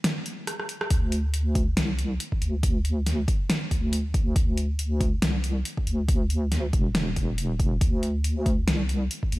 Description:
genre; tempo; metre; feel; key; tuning
deep dubstep; 139 BPM; 4/4; swing 56% on 16ths, half-time; unclear; A4 = 441 Hz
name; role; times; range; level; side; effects
deep house drum kit; drums; 0.0-9.4 s; hi-hat, rim click, snare drum; -29 LUFS; equal; none
deep soft wobble bass; bass; 0.9-9.4 s; E1 to D2; -25 LUFS; equal; chorus
electronic kick drum; drums; 0.9-9.3 s; none; -24 LUFS; equal; none
room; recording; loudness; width
little or no reverb; none; -23 LUFS; side -19 dB against mid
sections
0.0-9.4 A section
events
break 0.0-0.9; drum fill 0.5-0.9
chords
none

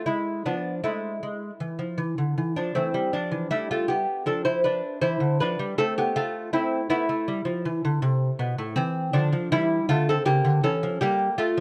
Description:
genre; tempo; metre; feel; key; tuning
classical, baroque-style dance for lute; 80 BPM; 4/4; rubato; A minor; A4 = 438 Hz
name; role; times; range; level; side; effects
lute; solo; 0.0-11.6 s; A2 to C5; -25 LUFS; equal; none
room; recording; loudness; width
small room ambience; dry, close 1970s-style studio recording; -25 LUFS; mono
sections
0.0-11.6 A section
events
none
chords
0.0 E; 2.8 A5/E; 4.3 Dm/F; 5.8 Am; 8.8 Dm11; 10.3 A/C#

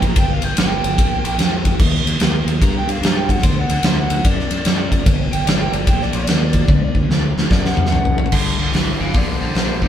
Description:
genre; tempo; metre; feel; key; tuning
blues rock power trio and southern rock; 147 BPM; 4/4; swing 65% on 8ths; G minor; A4 = 440 Hz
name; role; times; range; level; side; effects
lead guitar through a small cranked amp; melody; 0.0-9.9 s; C5 to C6; -25 LUFS; right 2 dB; overdrive, slapback echo
growling fingered electric bass; bass; 0.0-9.9 s; G1 to G2; -21 LUFS; equal; overdrive
big rock drum kit; drums; 0.0-9.9 s; crash cymbal, hi-hat, kick drum, ride cymbal, snare drum, toms; -16 LUFS; equal; none
raw garage guitar; riff; 8.3-9.9 s; G2 to E3; -22 LUFS; left 1 dB; overdrive
room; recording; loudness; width
light reverb; band playing live in one room; -14 LUFS; side -10 dB against mid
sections
0.0-8.3 A section; 8.3-9.9 B section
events
lead electric guitar solo 0.0-8.3; drum fill 6.7-8.3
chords
0.0 Gm7; 1.8 Eb; 3.4 D; 5.1 Gm; 6.7 D; 8.3 Gm

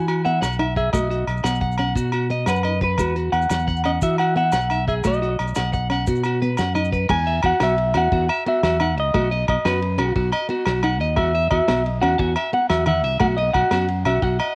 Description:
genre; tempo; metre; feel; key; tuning
highlife guitar band; 117 BPM (dotted quarters); 12/8; straight; E major; A4 = 439 Hz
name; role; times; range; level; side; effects
semi-hollow electric guitar; melody; 0.0-14.6 s; B4 to G#5; -25 LUFS; equal; spring reverb, cassette tape, plate reverb
electric guitar at the edge of break-up; arpeggios; 0.0-14.5 s; F#4 to F#5; -28 LUFS; equal; cassette tape, plate reverb
fingered electric bass; bass; 0.0-14.4 s; B1 to E3; -26 LUFS; equal; none
warm soul drum kit; drums; 0.1-14.5 s; crash cymbal, hi-hat, kick drum, ride cymbal, snare drum; -31 LUFS; equal; cassette tape
agogo bells; percussion; 0.1-14.6 s; none; -30 LUFS; equal; none
picked plugged-in steel-string acoustic guitar; accompaniment; 0.3-14.3 s; D#3 to D#4; -30 LUFS; equal; cassette tape, plate reverb
maracas; percussion; 0.4-7.0 s; none; -41 LUFS; equal; none
room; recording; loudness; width
light reverb; home recording on cassette; -20 LUFS; mono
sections
0.0-7.1 A section; 7.1-14.6 B section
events
none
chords
0.0 Eadd9; 0.9 B; 3.0 Eadd9; 5.0 B; 7.1 Esus2; 9.1 B; 11.2 Esus2; 13.2 B

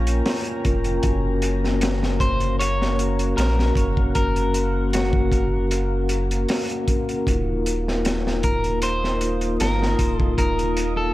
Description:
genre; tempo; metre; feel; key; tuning
trip hop; 77 BPM; 4/4; straight; unclear; A4 = 440 Hz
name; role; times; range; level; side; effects
electric guitar at the edge of break-up; melody; 0.0-11.1 s; F#4 to Db5; -27 LUFS; equal; vintage 12-bit sampler grit, tape echo
vibraphone with soft mallets; accompaniment; 0.0-11.1 s; Bb3 to Bb4; -25 LUFS; left 1 dB; tremolo, tape echo
deep dark ambient pad; sustained chords; 0.0-11.1 s; Bb3 to Eb6; -32 LUFS; equal; chorus, built-in reverb
round analog bass; bass; 0.0-11.1 s; Eb1 to Bb1; -24 LUFS; equal; tube saturation
crunchy breakbeat drum kit; drums; 0.1-11.0 s; hi-hat, kick drum, snare drum; -24 LUFS; equal; none
room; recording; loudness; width
light reverb, small room ambience; echo-heavy mix, vinyl crackle; -19 LUFS; side -16 dB against mid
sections
0.0-11.1 A section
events
none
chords
0.0 Bbm; 1.0 F#; 7.3 Ebsus2

